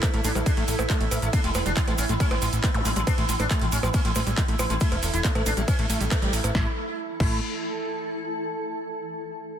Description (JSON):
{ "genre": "psychedelic trance", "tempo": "138 BPM", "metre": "4/4", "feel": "straight", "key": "unclear", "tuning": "A4 = 440 Hz", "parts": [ { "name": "sitar", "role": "melody", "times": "0.0-7.4 s", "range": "E3 to E4", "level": "-31 LUFS", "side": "equal", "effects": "phaser, sidechain pumping, digital delay" }, { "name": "overtone-sweeping drone", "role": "sustained chords", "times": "0.0-6.6 s", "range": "E4", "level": "-35 LUFS", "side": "right 4 dB", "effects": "chorus, built-in reverb, sidechain pumping" }, { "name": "screaming distorted acid line", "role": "riff", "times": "0.0-7.4 s", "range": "G3 to Bb3", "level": "-33 LUFS", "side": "equal", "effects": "distortion, chorus, auto-pan, sidechain pumping, digital delay" }, { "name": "electronic kick drum", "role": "drums", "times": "0.0-7.3 s", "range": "none", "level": "-25 LUFS", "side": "equal", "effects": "overdrive" }, { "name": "techno drum kit", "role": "drums", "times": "0.0-7.3 s", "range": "crash cymbal, handclaps, hi-hat, percussion blips, ride cymbal, snare drum", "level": "-30 LUFS", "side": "right 2 dB", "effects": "none" }, { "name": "egg shaker", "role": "percussion", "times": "0.0-6.5 s", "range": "none", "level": "-36 LUFS", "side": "right 3 dB", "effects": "none" }, { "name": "plucky analog bass", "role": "bass", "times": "0.1-7.4 s", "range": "E1 to A1", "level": "-27 LUFS", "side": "equal", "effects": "none" }, { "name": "zap", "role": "sound effects", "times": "2.7-2.9 s", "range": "none", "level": "-36 LUFS", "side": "left 1 dB", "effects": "none" }, { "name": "granular cloud pad", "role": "texture", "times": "7.0-8.2 s", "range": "E4 to A5", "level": "-31 LUFS", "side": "equal", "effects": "built-in reverb, sidechain pumping" } ], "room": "light reverb", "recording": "dense, heavily limited modern master", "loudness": "-22 LUFS", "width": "side -9 dB against mid", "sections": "0.0-6.5 A section; 6.5-8.3 B section", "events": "drop 0.0-6.5; band accent 6.1", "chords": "0.0 A5" }